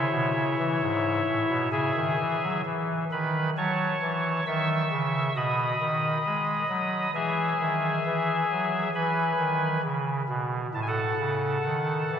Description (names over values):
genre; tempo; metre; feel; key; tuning
classical, chorale-style piece for pipe organ; 66 BPM; 4/4; rubato; E major; A4 = 440 Hz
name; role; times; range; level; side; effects
pipe organ, soft reed; solo; 0.0-12.2 s; G#2 to E6; -24 LUFS; equal; none
room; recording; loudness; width
wet cathedral reverb, RT60 4.3 s; none; -24 LUFS; side -8 dB against mid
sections
0.0-12.2 A section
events
none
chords
0.0 C#m; 3.6 F#m; 5.3 B; 7.1 E; 10.7 B7/A (rootless)